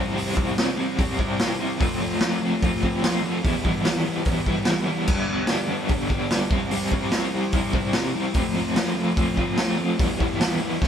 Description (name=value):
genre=garage rock duo or trio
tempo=146 BPM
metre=4/4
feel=straight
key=unclear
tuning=A4 = 440 Hz
part: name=crunchy overdriven guitar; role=riff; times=0.0-10.9 s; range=G2 to F4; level=-23 LUFS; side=equal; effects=tremolo
part: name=raw garage drum kit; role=drums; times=0.2-10.9 s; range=crash cymbal, hi-hat, kick drum, snare drum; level=-24 LUFS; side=equal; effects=none
room=moderate stone room reverb, RT60 1.1 s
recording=band playing live in one room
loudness=-21 LUFS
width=side -8 dB against mid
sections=0.0-10.9 A section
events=none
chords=0.0 C; 1.8 F; 3.4 Em; 5.1 G; 6.5 C; 8.4 F; 10.0 Em